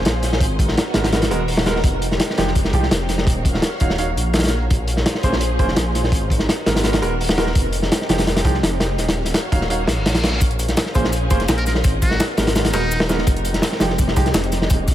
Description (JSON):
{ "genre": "drum and bass, jungle", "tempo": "168 BPM", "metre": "4/4", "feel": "straight", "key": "unclear", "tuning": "A4 = 441 Hz", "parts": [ { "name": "soft string machine", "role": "sustained chords", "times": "0.0-14.9 s", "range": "Ab3 to F5", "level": "-26 LUFS", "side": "equal", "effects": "ensemble chorus" }, { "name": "dark detuned saw bass", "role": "bass", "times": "0.0-14.9 s", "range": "Eb1 to C2", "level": "-22 LUFS", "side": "equal", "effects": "none" }, { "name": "crunchy breakbeat drum kit", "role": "drums", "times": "0.1-14.9 s", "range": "hi-hat, kick drum, snare drum", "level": "-18 LUFS", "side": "equal", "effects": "none" }, { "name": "warm grand piano", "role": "stabs", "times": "0.9-14.3 s", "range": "F3 to F5", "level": "-26 LUFS", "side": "right 3 dB", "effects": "vintage 12-bit sampler grit, dub echo" }, { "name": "reverse cymbal", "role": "sound effects", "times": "9.8-10.4 s", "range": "none", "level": "-28 LUFS", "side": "left 1 dB", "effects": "none" }, { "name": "breakbeat sampler-style drum kit", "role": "drums", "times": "10.4-14.9 s", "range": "hi-hat, shaker, snare drum", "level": "-29 LUFS", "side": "left 2 dB", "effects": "high-pass filter on perc, high-pass filter on hats, high-pass filter on snare, high-pass filter on room" }, { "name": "trumpet with metal mute", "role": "melody", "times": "11.6-13.0 s", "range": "Eb4 to Bb4", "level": "-28 LUFS", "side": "equal", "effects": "dub echo" } ], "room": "studio ambience", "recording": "none", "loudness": "-16 LUFS", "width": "side -12 dB against mid", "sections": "0.0-14.9 A section", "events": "reverse cymbal 9.8-10.4", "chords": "0.4 Abm9; 1.8 Fm9; 3.3 Ebm9; 4.7 Bbm9; 6.1 Abm9; 7.6 Fm9; 9.0 Ebm9; 10.4 Bbm9; 11.8 Abm9; 13.3 Fm9" }